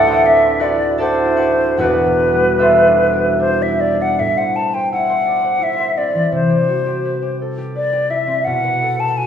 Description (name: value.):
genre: classical, impressionist duo for flute and harp.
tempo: 73-88 BPM.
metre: 3/4.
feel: rubato.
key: A dorian.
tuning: A4 = 442 Hz.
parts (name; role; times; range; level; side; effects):
hollow concert flute; melody; 0.0-9.3 s; B4 to A5; -16 LUFS; left 1 dB; none.
concert harp; accompaniment; 0.0-9.3 s; E1 to B5; -16 LUFS; right 1 dB; none.
room: wet recital hall reverb, RT60 1.5 s.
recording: heard from further back in the room.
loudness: -13 LUFS.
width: side -8 dB against mid.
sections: 0.0-4.2 A section; 4.2-9.3 B section.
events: none.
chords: 0.0 D9; 1.8 Em7; 4.2 Am6; 6.3 Cmaj7; 8.5 B5.